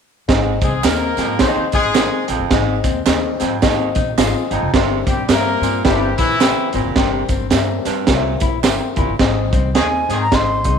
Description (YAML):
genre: uptempo 1960s-style soul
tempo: 108 BPM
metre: 4/4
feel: swing 60% on 8ths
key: Ab major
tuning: A4 = 440 Hz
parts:
  - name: dark upright piano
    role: accompaniment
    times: 0.3-10.8 s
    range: G2 to Bb5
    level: -22 LUFS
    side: left 12 dB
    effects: none
  - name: raspy baritone saxophone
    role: riff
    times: 0.3-9.1 s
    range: Eb2 to C3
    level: -26 LUFS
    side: right 11 dB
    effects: none
  - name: upright bass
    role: bass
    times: 0.3-10.8 s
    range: F1 to Ab2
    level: -23 LUFS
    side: left 1 dB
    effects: none
  - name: crunchy breakbeat drum kit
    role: drums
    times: 0.3-10.8 s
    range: hi-hat, kick drum, snare drum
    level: -18 LUFS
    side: right 3 dB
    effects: none
  - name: warm horn section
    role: second line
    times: 0.6-10.2 s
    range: Eb3 to C5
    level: -21 LUFS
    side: left 2 dB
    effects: none
  - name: electric guitar through a small old amp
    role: riff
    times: 0.6-10.8 s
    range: Bb3 to G4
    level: -27 LUFS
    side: left 11 dB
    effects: none
  - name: tambourine and handclaps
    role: percussion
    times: 0.6-8.8 s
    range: none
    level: -31 LUFS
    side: right 12 dB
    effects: none
  - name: breathy hollow jazz flute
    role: melody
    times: 9.8-10.8 s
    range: Ab5 to C6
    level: -19 LUFS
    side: right 1 dB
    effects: none
room: moderate plate reverb, RT60 2.2 s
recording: 1960s-style stereo with parts hard left and right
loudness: -14 LUFS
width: side -7 dB against mid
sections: 0.3-9.2 A section; 9.2-10.8 B section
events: upright piano fill 3.9-4.7, 8.4-9.2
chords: 0.3 Ab; 4.7 C7; 9.2 Ab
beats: | 0.28 0.84 1.40 1.96 | 2.51 3.07 3.62 4.18 | 4.74 5.30 5.85 6.41 | 6.97 7.53 8.08 8.64 | 9.20 9.76 10.32